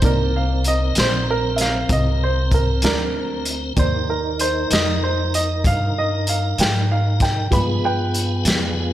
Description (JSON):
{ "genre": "slow blues", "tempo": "64 BPM (dotted quarters)", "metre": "12/8", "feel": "straight", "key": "C minor", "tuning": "A4 = 439 Hz", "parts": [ { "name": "clear upright piano", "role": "accompaniment", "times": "0.0-8.9 s", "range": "Eb3 to B5", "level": "-23 LUFS", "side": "right 2 dB", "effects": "slapback echo" }, { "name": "tonewheel organ", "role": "sustained chords", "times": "0.0-8.9 s", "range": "B3 to Bb4", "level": "-26 LUFS", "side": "left 1 dB", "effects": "slow rotary speaker, overdrive, chorus vibrato" }, { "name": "upright bass", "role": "bass", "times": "0.0-8.9 s", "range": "Bb1 to Ab2", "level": "-22 LUFS", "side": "equal", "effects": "none" }, { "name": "crunchy breakbeat drum kit", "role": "drums", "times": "0.0-8.6 s", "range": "hi-hat, kick drum, snare drum", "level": "-22 LUFS", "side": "equal", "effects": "none" } ], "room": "light reverb", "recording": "none", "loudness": "-17 LUFS", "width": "side -13 dB against mid", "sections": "0.0-8.9 A section", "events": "upright piano solo 0.0-8.9", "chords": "0.0 Cm9; 7.5 G7b9", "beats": "| 0.03 0.96 1.90 2.83 | 3.77 4.70 5.64 6.57 | 7.51 8.45" }